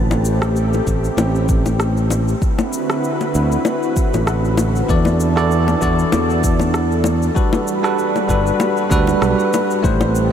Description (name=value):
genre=sunset chillout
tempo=97 BPM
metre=4/4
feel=swing 55% on 16ths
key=unclear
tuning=A4 = 440 Hz
part: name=lush unison pad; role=sustained chords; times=0.0-10.3 s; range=D3 to B4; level=-21 LUFS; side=equal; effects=chorus
part: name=modern bright fingered electric bass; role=bass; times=0.0-10.3 s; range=G1 to E2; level=-18 LUFS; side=equal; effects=none
part: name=electronic shaker and rim click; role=drums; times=0.1-10.3 s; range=none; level=-28 LUFS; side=right 1 dB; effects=none
part: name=bongos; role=percussion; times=0.1-10.1 s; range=none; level=-25 LUFS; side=left 3 dB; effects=none
part: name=electronic kick drum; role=drums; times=0.9-10.0 s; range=none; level=-19 LUFS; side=equal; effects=none
part: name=bell-like tine electric piano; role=accompaniment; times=4.9-10.3 s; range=E3 to D5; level=-18 LUFS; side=moving between left 4 dB and right 3 dB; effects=auto-pan, ping-pong delay
part: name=wind-like tuned noise texture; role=texture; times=10.3 s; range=A4 to A5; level=-39 LUFS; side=equal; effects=none
room=moderate huge ambient reverb, RT60 7.7 s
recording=dreamy mix soaked in reverb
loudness=-14 LUFS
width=side -9 dB against mid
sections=0.0-10.3 A section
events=none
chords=0.0 Am7; 2.4 D13; 4.9 E7sus4; 7.4 Gmaj7